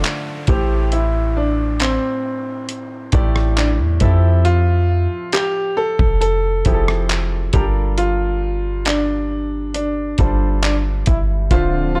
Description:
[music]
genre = contemporary R&B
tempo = 68 BPM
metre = 4/4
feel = straight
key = unclear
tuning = A4 = 440 Hz
[part]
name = warm baby grand piano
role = accompaniment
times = 0.0-12.0 s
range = A2 to E5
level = -29 LUFS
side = equal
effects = none
[part]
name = clean 808-style bass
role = bass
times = 0.0-12.0 s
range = D1 to F2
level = -20 LUFS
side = equal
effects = none
[part]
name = dusty soul sampler-style drum kit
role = drums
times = 0.0-11.7 s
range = handclaps, hi-hat, kick drum, rim click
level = -22 LUFS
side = equal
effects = none
[part]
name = downlifter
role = sound effects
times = 0.0-4.5 s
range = none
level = -41 LUFS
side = equal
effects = none
[part]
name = clear grand piano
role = melody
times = 0.5-12.0 s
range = C4 to A4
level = -24 LUFS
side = equal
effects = tape echo
[part]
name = lush unison pad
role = sustained chords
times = 11.5-12.0 s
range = D3 to C4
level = -27 LUFS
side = equal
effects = chorus
[sound]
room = digital ambience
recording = dark, warm production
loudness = -18 LUFS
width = mono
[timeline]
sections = 0.0-12.0 A section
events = none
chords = 0.5 Am7; 4.0 Fmaj7; 7.5 Gm7

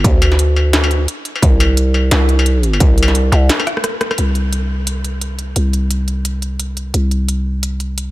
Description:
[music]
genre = half-time drum and bass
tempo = 174 BPM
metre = 4/4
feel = swing 59% on 16ths, half-time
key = unclear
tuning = A4 = 440 Hz
[part]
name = growling 808-style bass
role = bass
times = 0.0-8.1 s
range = C2 to D2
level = -14 LUFS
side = equal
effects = none
[part]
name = electronic kick drum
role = drums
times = 0.0-2.9 s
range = none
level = -13 LUFS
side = equal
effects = distortion
[part]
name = industrial drum kit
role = drums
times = 0.0-8.1 s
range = hi-hat, rim click, snare drum, struck metal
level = -19 LUFS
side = left 1 dB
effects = none
[sound]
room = little or no reverb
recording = none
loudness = -13 LUFS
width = side -17 dB against mid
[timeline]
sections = 0.0-4.2 A section; 4.2-8.1 B section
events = drop 0.0-4.2; break 3.5-4.2; drum fill 3.5-4.2; band accent 4.1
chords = none

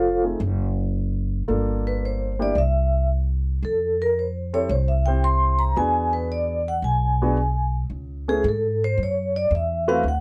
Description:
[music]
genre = jazz, small-group swing and bop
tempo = 112 BPM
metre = 4/4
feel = swing 69% on 8ths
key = unclear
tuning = A4 = 445 Hz
[part]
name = vibraphone with medium mallets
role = melody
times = 0.0-10.2 s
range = F4 to C6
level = -26 LUFS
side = equal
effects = none
[part]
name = upright bass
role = bass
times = 0.0-10.2 s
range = F1 to G#2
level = -26 LUFS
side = equal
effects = none
[part]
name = warm grand piano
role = accompaniment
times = 0.2-10.0 s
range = A3 to C5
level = -28 LUFS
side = equal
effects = none
[sound]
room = little or no reverb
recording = none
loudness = -23 LUFS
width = mono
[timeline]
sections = 0.0-7.9 A section; 7.9-10.2 B section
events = vibraphone solo 7.9-10.2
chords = 0.4 N.C.; 1.5 Gm7; 2.6 C; 3.6 Fmaj7(no3); 5.8 E7; 7.9 Amaj7

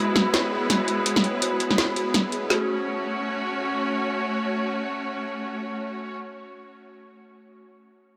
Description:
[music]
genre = half-time drum and bass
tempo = 166 BPM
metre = 4/4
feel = swing 58% on 16ths, half-time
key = F# minor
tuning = A4 = 440 Hz
[part]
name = bright symphonic string section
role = sustained chords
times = 0.0-6.2 s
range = G#3 to C#5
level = -29 LUFS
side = equal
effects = none
[part]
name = dark detuned synth bell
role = arpeggios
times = 0.0-7.9 s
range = F#4 to C#5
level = -34 LUFS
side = equal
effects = chorus, phaser, low-pass filter, dub echo
[part]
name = drum and bass drum kit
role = drums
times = 0.2-2.4 s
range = hi-hat, snare drum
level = -26 LUFS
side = equal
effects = none
[part]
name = electronic snare drum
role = drums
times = 2.5-2.6 s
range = none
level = -24 LUFS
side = equal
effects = none
[sound]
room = moderate huge ambient reverb, RT60 4.9 s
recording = none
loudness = -25 LUFS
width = mono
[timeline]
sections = 0.0-2.5 A section; 2.5-5.4 B section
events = filter sweep on synth bell 0.0-2.5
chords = 0.0 E; 2.5 F#m

